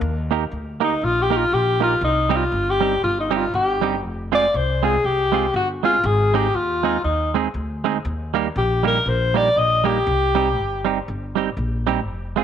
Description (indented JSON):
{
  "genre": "ska",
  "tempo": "119 BPM",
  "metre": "4/4",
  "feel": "swing 58% on 8ths",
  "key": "Eb major",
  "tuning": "A4 = 440 Hz",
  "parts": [
    { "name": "upright bass", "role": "bass", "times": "0.0-12.4 s", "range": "F1 to Eb2", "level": "-25 LUFS", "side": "left 1 dB", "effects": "none" },
    { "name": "semi-hollow electric guitar", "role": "accompaniment", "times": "0.3-12.4 s", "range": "G3 to Bb4", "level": "-24 LUFS", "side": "right 11 dB", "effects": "none" },
    { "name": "warm alto saxophone", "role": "melody", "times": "0.8-11.1 s", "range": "Eb4 to Eb5", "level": "-19 LUFS", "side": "left 2 dB", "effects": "none" }
  ],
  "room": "wet spring reverb, RT60 1.6 s, small room ambience",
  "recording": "1960s-style stereo",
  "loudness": "-18 LUFS",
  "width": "side -9 dB against mid",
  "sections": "0.0-12.4 A section",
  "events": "alto saxophone solo 0.0-12.4",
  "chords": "0.0 Eb; 2.0 Cm; 4.0 Fm; 6.0 Ab; 8.1 Eb; 10.1 Cm"
}